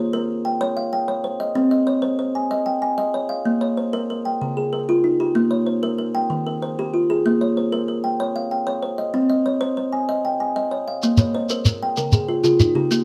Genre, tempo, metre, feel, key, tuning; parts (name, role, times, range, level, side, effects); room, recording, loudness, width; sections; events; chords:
southern african traditional, mbira-style interlocking cycle; 127 BPM (dotted quarters); 12/8; straight; Bb dorian; A4 = 440 Hz
kalimba; arpeggios; 0.0-13.0 s; Db3 to Ab5; -22 LUFS; equal
shekere; percussion; 11.0-13.0 s; -21 LUFS; equal
kalimba; arpeggios; 11.2-13.0 s; Db3 to Eb5; -28 LUFS; equal
light reverb; -21 LUFS; mono
0.0-11.0 A section; 11.0-13.0 A section
0.0 Bbm; 1.6 Cm; 3.5 Bbm; 4.4 Db; 5.3 Bbm; 6.3 Eb; 7.2 Bbm; 9.1 Cm; 11.0 Bbm; 12.0 Db